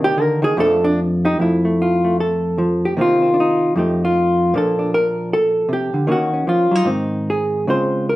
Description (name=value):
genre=solo jazz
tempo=152 BPM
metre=4/4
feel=swing 64% on 8ths, rubato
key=unclear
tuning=A4 = 441 Hz
part: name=hollow-body jazz guitar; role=solo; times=0.0-8.2 s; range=F2 to C5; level=-15 LUFS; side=equal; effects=none
room=moderate large studio reverb, RT60 0.8 s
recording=band playing live in one room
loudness=-15 LUFS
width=side -16 dB against mid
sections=0.0-1.4 A section; 1.4-8.2 B section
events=hollow-body jazz guitar solo 0.0-1.4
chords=0.0 Cm9; 0.6 F69; 1.4 F; 3.0 Cm7; 3.8 F9; 4.5 Bbmaj7; 6.1 Ebm7; 6.9 Ab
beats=0.19 0.58 0.99 | 1.40 1.80 2.20 2.59 | 2.98 3.38 3.77 4.16 | 4.54 4.92 5.31 5.69 | 6.08 6.47 6.87 7.27 | 7.68 8.08